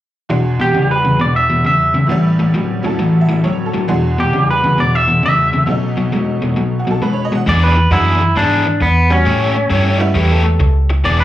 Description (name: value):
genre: blues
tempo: 134 BPM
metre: 4/4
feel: swing 67% on 8ths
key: E mixolydian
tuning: A4 = 439 Hz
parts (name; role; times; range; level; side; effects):
- tack piano; accompaniment; 0.3-10.1 s; E2 to F#5; -22 LUFS; right 4 dB; slapback echo
- cranked stack guitar; riff; 0.3-11.2 s; E2 to C#5; -16 LUFS; left 2 dB; overdrive
- electric guitar through a small old amp; melody; 0.6-11.2 s; B3 to E5; -15 LUFS; right 1 dB; slapback echo
- vintage muted fingered electric bass; bass; 7.5-11.2 s; E1 to A2; -14 LUFS; equal; none
- dark upright piano; second line; 10.0-10.7 s; G4 to E5; -24 LUFS; right 2 dB; slapback echo, tape echo
room: moderate club ambience, RT60 0.5 s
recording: live gig heard through the venue's PA, club reverb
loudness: -12 LUFS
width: side -13 dB against mid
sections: 0.3-7.5 A section; 7.5-11.2 B section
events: none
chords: 0.3 E7; 2.1 A7; 3.9 E7; 5.7 B7; 7.5 E7; 9.3 A7